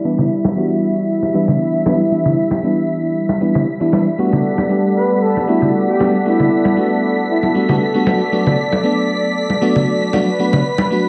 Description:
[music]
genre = deep house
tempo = 116 BPM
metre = 4/4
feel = swing 53% on 16ths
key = E minor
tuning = A4 = 440 Hz
[part]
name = warm analog pad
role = sustained chords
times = 0.0-11.1 s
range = G3 to F#5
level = -21 LUFS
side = equal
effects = chorus
[part]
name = mellow FM electric piano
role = stabs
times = 0.0-11.1 s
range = E3 to A4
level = -20 LUFS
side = equal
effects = chorus, analog delay
[part]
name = analog string pad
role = texture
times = 0.0-11.1 s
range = B6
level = -30 LUFS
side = equal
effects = ensemble chorus
[part]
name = congas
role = percussion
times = 0.2-10.9 s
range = none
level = -22 LUFS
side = equal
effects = none
[part]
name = breathy flute-like synth lead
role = melody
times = 5.0-7.5 s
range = E4 to B4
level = -21 LUFS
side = equal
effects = subtle chorus, analog delay
[sound]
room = wet lush hall reverb, RT60 1.8 s, digital ambience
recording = dreamy mix soaked in reverb, low-pass filter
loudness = -16 LUFS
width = mono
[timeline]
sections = 0.0-11.1 A section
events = filter sweep on analog synth pad 0.0-11.1; filter sweep 0.0-11.1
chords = 0.0 Em7; 4.2 A13sus4; 8.1 Bm7

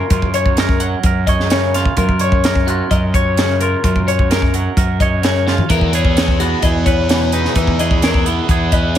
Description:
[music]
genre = math rock and midwest emo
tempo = 129 BPM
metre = 4/4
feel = straight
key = F# major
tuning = A4 = 440 Hz
[part]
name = twangy electric guitar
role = accompaniment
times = 0.0-9.0 s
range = F#2 to C#5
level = -21 LUFS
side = right 8 dB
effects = phaser
[part]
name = twelve-string electric guitar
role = arpeggios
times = 0.0-9.0 s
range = F#4 to F#5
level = -21 LUFS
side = left 7 dB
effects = spring reverb
[part]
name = fuzz fingered electric bass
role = bass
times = 0.1-9.0 s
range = E2 to F#2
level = -18 LUFS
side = equal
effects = overdrive
[part]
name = crisp fusion drum kit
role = drums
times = 0.1-9.0 s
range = hi-hat, kick drum, snare drum, toms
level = -17 LUFS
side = equal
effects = none
[part]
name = biting overdriven guitar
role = riff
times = 5.7-9.0 s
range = E3 to G#4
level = -21 LUFS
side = right 1 dB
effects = phaser
[sound]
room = light reverb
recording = none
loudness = -13 LUFS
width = side -10 dB against mid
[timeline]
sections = 0.0-9.0 A section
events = drum fill 5.5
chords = 0.0 F#maj7; 5.7 Emaj9#11

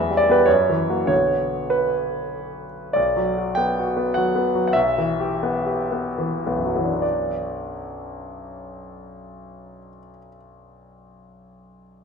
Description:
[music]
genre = classical, romantic character piece for solo piano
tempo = 66-109 BPM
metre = 3/4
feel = rubato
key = B minor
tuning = A4 = 441 Hz
[part]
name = clear concert grand piano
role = solo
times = 0.0-12.0 s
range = B1 to G5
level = -20 LUFS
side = equal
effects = none
[sound]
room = wet recital hall reverb, RT60 1.7 s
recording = none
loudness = -19 LUFS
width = side -6 dB against mid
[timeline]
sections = 0.0-3.0 A section; 3.0-7.0 B section; 7.0-11.9 C section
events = slowing down 2.0-7.0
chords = 0.5 F#7; 1.1 Bm; 4.8 Em/B; 7.0 Bm

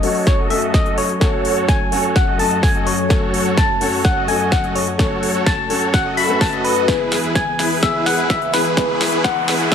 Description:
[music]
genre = EDM, festival progressive house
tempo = 127 BPM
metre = 4/4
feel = straight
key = F# dorian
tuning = A4 = 440 Hz
[part]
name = soft struck synth lead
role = melody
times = 0.0-9.7 s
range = B4 to B5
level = -20 LUFS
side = left 2 dB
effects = chorus, phaser, digital delay
[part]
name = dark grand piano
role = accompaniment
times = 0.0-9.7 s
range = G#3 to B4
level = -24 LUFS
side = left 4 dB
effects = sidechain pumping, digital delay
[part]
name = lush unison pad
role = sustained chords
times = 0.0-9.7 s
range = E2 to C#5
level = -26 LUFS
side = left 1 dB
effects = chorus, sidechain pumping
[part]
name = supersaw chords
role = riff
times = 0.0-9.7 s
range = E4 to E5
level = -23 LUFS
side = right 1 dB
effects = vintage 12-bit sampler grit, sidechain pumping, low-pass filter, digital delay
[part]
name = big-room dance drum kit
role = drums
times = 0.0-9.7 s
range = hi-hat, snare drum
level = -24 LUFS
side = left 1 dB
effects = overdrive, high-pass filter on hats, high-pass filter on snare
[part]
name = electronic kick drum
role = drums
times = 0.3-9.7 s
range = none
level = -18 LUFS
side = equal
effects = overdrive
[part]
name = riser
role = sound effects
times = 7.8-9.7 s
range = none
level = -27 LUFS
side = left 1 dB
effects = none
[sound]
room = light reverb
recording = high-pass filter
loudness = -14 LUFS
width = side -8 dB against mid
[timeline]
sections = 0.0-9.7 A section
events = build-up 0.0-9.7; drum fill 0.0-9.7; filter sweep 0.0-9.7; riser 7.8-9.7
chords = 0.0 F#m; 6.9 E

